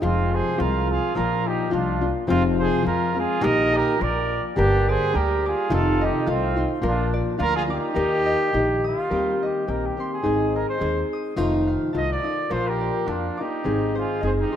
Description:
mexican folk, mariachi; 106 BPM; 2/4; swing 55% on 8ths; Eb major; A4 = 441 Hz
mellow trumpet; melody; 0.0-14.6 s; F4 to Eb5; -27 LUFS; right 1 dB
warm trumpet; second line; 0.0-8.8, 12.5-14.6 s; C4 to Bb4; -28 LUFS; right 5 dB
nylon-string guitar; accompaniment; 0.0-14.6 s; F2 to Ab4; -24 LUFS; left 2 dB
concert harp; arpeggios; 0.0-1.0, 4.6-14.6 s; Ab4 to Eb6; -31 LUFS; left 2 dB
upright bass; bass; 0.0-14.4 s; F1 to F2; -26 LUFS; right 1 dB
moderate lush hall reverb, RT60 2.3 s; rough home demo mix; -20 LUFS; side -9 dB against mid
0.0-9.1 A section; 9.1-14.6 B section
0.0 Fm; 1.2 Bb; 2.3 Fm; 3.4 Eb/Bb; 4.0 Bb; 4.6 Gm; 5.7 F7; 6.8 Bb; 8.0 Eb; 9.1 Eb6; 10.3 Ab; 11.4 F7; 12.5 Bb; 13.7 Ab

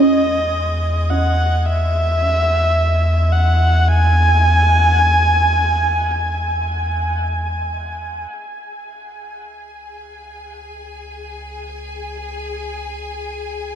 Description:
ambient; free time; C# minor; A4 = 440 Hz
dark electric violin; melody; 0.0-7.2 s; D#5 to G#5; -19 LUFS; right 1 dB; dub echo
soft round pluck; arpeggios; 0.0-3.1 s; C#4 to E4; -17 LUFS; right 2 dB; ensemble chorus, dub echo
round analog bass; bass; 0.0-13.8 s; C#2 to E2; -18 LUFS; equal
rich studio violin section; texture; 0.0-13.8 s; G#3 to G#6; -33 LUFS; left 3 dB
moderate spring reverb, RT60 2.4 s; echo-heavy mix; -15 LUFS; side -9 dB against mid
0.0-8.3 A section; 8.3-13.8 B section
fade-out on violin section 0.0-8.3
0.0 E; 8.3 C#5

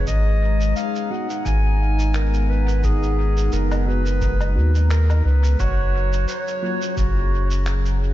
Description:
ambient dub; 87 BPM; 4/4; swing 56% on 16ths; G# dorian; A4 = 440 Hz
warm clarinet; melody; 0.0-8.0 s; F#4 to G#5; -27 LUFS; equal; dub echo
warm analog pad; sustained chords; 0.0-8.1 s; F#3 to A#5; -28 LUFS; left 1 dB; chorus
soft dub sub bass; bass; 0.0-8.1 s; F#1 to D#2; -18 LUFS; equal
electronic kick drum; drums; 0.1-7.1 s; -26 LUFS; equal
electronic shaker, finger snaps and woodblock; drums; 0.1-8.0 s; -35 LUFS; equal; dub echo
mellow tine electric piano; stabs; 1.1-6.8 s; F#3 to F#4; -34 LUFS; left 1 dB; medium stereo tremolo, dub echo
pedal steel guitar; arpeggios; 5.6-7.9 s; F#4; -32 LUFS; right 2 dB; analog chorus, tape echo
light reverb; nothing above 7.7 kHz; -18 LUFS; side -14 dB against mid
0.0-8.1 A section
0.1 G#m7; 5.6 F#maj7

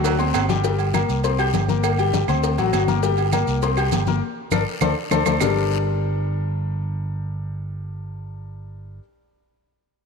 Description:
latin, salsa; 202 BPM; 4/4; straight; G harmonic minor; A4 = 445 Hz
clear baritone saxophone; second line; 0.0-0.5 s; F#3; -30 LUFS; right 8 dB
clear grand piano; accompaniment; 0.0-9.0 s; F#3 to G6; -24 LUFS; left 8 dB
fingered electric bass; bass; 0.0-9.0 s; G1 to D2; -23 LUFS; right 1 dB
congas; percussion; 0.0-5.5 s; -28 LUFS; left 9 dB
cowbell and bongos; percussion; 0.0-5.5 s; -29 LUFS; left 9 dB
guiro; percussion; 0.0-5.5 s; -38 LUFS; left 11 dB
maracas; percussion; 0.0-5.5 s; -36 LUFS; right 15 dB
timbales and agogo bells; percussion; 0.0-5.5 s; -28 LUFS; right 14 dB
claves; percussion; 0.3-5.5 s; -32 LUFS; right 15 dB
moderate echo chamber reverb, RT60 2.5 s; 1960s-style stereo with parts hard left and right; -19 LUFS; side -5 dB against mid
0.6-5.4 A section; 5.4-7.8 B section
drum fill 0.0-0.6, 4.5-5.4; band accent 4.2-5.4
0.0 D7; 0.6 C5; 1.8 Gm; 2.4 D7; 3.0 C5; 4.2 Gmadd9; 4.8 D5; 5.4 Gmadd9

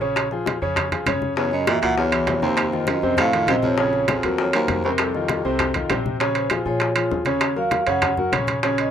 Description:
Afro-Cuban jazz; 199 BPM; 4/4; straight; Bb minor; A4 = 440 Hz
clear grand piano; accompaniment; 0.0-8.9 s; C3 to Db5; -23 LUFS; equal
upright bass; bass; 0.0-8.9 s; Bb1 to Bb2; -32 LUFS; left 1 dB
bongos; percussion; 0.0-8.9 s; -29 LUFS; left 8 dB
claves; percussion; 0.2-8.5 s; -35 LUFS; left 2 dB
congas; percussion; 0.2-8.9 s; -32 LUFS; left 2 dB
timbales; percussion; 0.2-8.9 s; -25 LUFS; right 6 dB
vibraphone with medium mallets; melody; 1.4-8.9 s; A4 to Gb5; -24 LUFS; right 1 dB
warm baritone saxophone; second line; 1.4-5.9 s; C2 to Bb2; -24 LUFS; right 1 dB
light reverb; rough home demo mix; -18 LUFS; side -9 dB against mid
0.0-6.2 A section; 6.2-8.9 B section
vibraphone solo 6.2-8.9
0.0 Bbm7; 1.4 Gb5; 2.6 F7b9; 3.8 Bbm9; 4.4 Ebmadd9; 5.0 F7; 6.2 Bbm9; 7.4 Ebm9

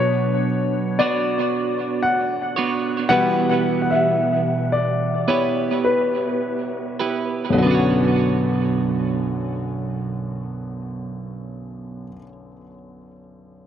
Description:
pop; 50-59 BPM; 4/4; straight; B minor; A4 = 440 Hz
clear baby grand piano; accompaniment; 0.0-13.7 s; B1 to F#5; -21 LUFS; left 3 dB; tape echo
twelve-string electric guitar; arpeggios; 0.0-12.3 s; B2 to C#5; -22 LUFS; right 5 dB; warbly pitch drift, tape echo
wet spring reverb, RT60 1.7 s, small room ambience; echo-heavy mix; -18 LUFS; side -9 dB against mid
0.0-7.6 A section; 7.6-12.4 B section
slowing down 0.0-7.6; grand piano solo 0.0-7.6
0.0 Bmadd9; 3.1 Em/B; 7.6 Bmadd9

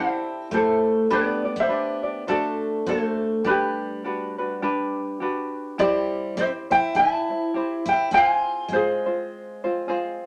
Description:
Hawaiian; 102 BPM; 4/4; swing 58% on 8ths; G major, C major from 5.8 s; A4 = 443 Hz
ukulele; melody; 0.0-10.2 s; G4 to A5; -25 LUFS; equal
picked steel-string acoustic guitar; second line; 0.0-10.2 s; G3 to F4; -30 LUFS; equal
tenor ukulele; accompaniment; 0.0-10.3 s; C4 to D5; -30 LUFS; equal
wet studio reverb, RT60 0.6 s; -24 LUFS; mono
0.0-5.8 A section; 5.8-10.3 B section
0.0 Am7; 1.1 G; 2.3 D7; 3.5 Gmaj7; 5.8 C; 8.1 Fm

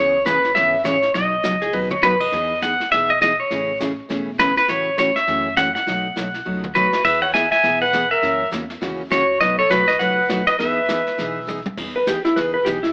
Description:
country, western swing; 203 BPM; 4/4; swing 60% on 8ths; E major; A4 = 440 Hz
pedal steel guitar; melody; 0.0-11.6 s; B4 to G#5; -17 LUFS; equal
picked steel-string acoustic guitar; accompaniment; 0.0-12.8 s; B2 to G#4; -26 LUFS; equal
upright bass; bass; 0.0-12.9 s; E1 to F#2; -38 LUFS; equal
vintage brush drum kit; drums; 0.3-12.9 s; brushed snare drum, crash cymbal, hi-hat, kick drum, snare drum, toms; -29 LUFS; equal
clean lap steel guitar; second line; 1.6-2.3, 12.0-12.9 s; E4 to C#5; -19 LUFS; equal
breathy clarinet; second line; 6.8-11.6 s; F#4 to E5; -23 LUFS; equal
light reverb; AM radio sound; -16 LUFS; side -39 dB against mid
0.0-2.3 A section; 2.3-11.8 B section; 11.8-12.9 C section
drum fill 1.7, 6.5-7.0, 11.5; electric slide guitar solo 11.8-12.9
0.0 C#m7; 1.1 B; 2.3 Emaj7; 3.5 Amaj7; 4.7 F#m7/A; 5.9 B7; 7.0 E; 8.2 F#7; 9.4 B7; 10.6 Emaj7

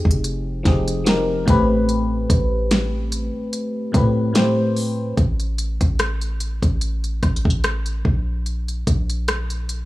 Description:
contemporary R&B; 73 BPM; 4/4; swing 54% on 16ths; A minor; A4 = 441 Hz
FM electric piano; accompaniment; 0.0-5.2 s; A2 to C5; -20 LUFS; left 1 dB; chorus
warm 808-style bass; bass; 0.0-9.9 s; F1 to A2; -22 LUFS; equal
smooth R&B drum kit; drums; 0.1-9.9 s; hi-hat, kick drum, rim click, snare drum; -20 LUFS; equal
little or no reverb; dry, gritty hardware recording, small room ambience; -18 LUFS; side -17 dB against mid
0.0-5.2 A section; 5.2-9.9 B section
0.0 Fm7; 1.5 Am7; 5.2 N.C.

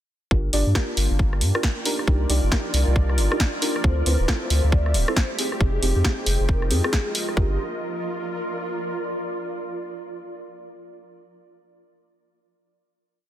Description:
UK garage, two-step garage; 136 BPM; 4/4; swing 62% on 16ths; G phrygian; A4 = 440 Hz
warm analog pad; sustained chords; 0.5-7.6 s; Ab3 to G5; -36 LUFS; equal; chorus, sidechain pumping
deep mellow chord stab; stabs; 0.3-7.5 s; C4 to D5; -29 LUFS; equal; chorus, digital delay
saturated sub bass; bass; 0.3-7.6 s; D1 to G2; -21 LUFS; equal
electronic kick drum; drums; 0.3-7.5 s; -21 LUFS; equal
granular cloud pad; texture; 1.4-9.1 s; F4 to Eb5; -31 LUFS; right 1 dB; built-in reverb, sidechain pumping
punchy analog drum machine; drums; 0.5-7.4 s; hi-hat, rim click, snare drum; -26 LUFS; equal
vibraphone with soft mallets; melody; 3.8-7.5 s; G4 to D5; -32 LUFS; left 1 dB; digital delay
light reverb, digital ambience; dense, heavily limited modern master; -20 LUFS; side -12 dB against mid
0.3-7.4 groove; 7.4-9.1 final chord
0.3 Gm7; 1.9 Cm7; 3.8 Dm7; 5.4 Fm7; 7.4 Gm7

